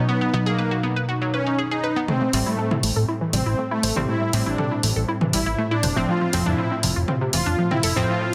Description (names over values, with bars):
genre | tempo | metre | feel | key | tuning
melodic techno | 120 BPM | 4/4 | straight | unclear | A4 = 439 Hz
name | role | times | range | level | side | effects
dark analog pad | sustained chords | 0.1-8.3 s | B2 to C5 | -32 LUFS | equal | chorus
analog pluck | arpeggios | 0.0-8.3 s | C3 to C5 | -29 LUFS | equal | chorus, delay
synth brass stab | stabs | 0.0-8.3 s | A2 to D#4 | -29 LUFS | equal | chorus, delay
soft supersaw | melody | 0.1-8.3 s | A3 to F4 | -28 LUFS | equal | dub echo
swarming drone | drone | 3.6-8.3 s | A2 | -36 LUFS | equal | none
punchy analog drum machine | drums | 2.1-7.9 s | hi-hat, toms | -28 LUFS | equal | none
fat analog bass | bass | 2.3-8.1 s | E1 to A2 | -27 LUFS | equal | none
room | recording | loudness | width
moderate lush hall reverb, RT60 1.6 s | dense, heavily limited modern master | -22 LUFS | mono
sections
0.0-2.1 A section; 2.1-8.3 B section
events
filter sweep 0.0-2.1; build-up 2.1-8.3; filter sweep on synth arpeggio sound 2.1-8.3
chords
0.0 B; 2.1 Am7; 6.1 F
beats
| 0.08 0.58 1.08 1.58 | 2.08 2.58 3.08 3.58 | 4.08 4.58 5.08 5.58 | 6.08 6.58 7.08 7.58 | 8.08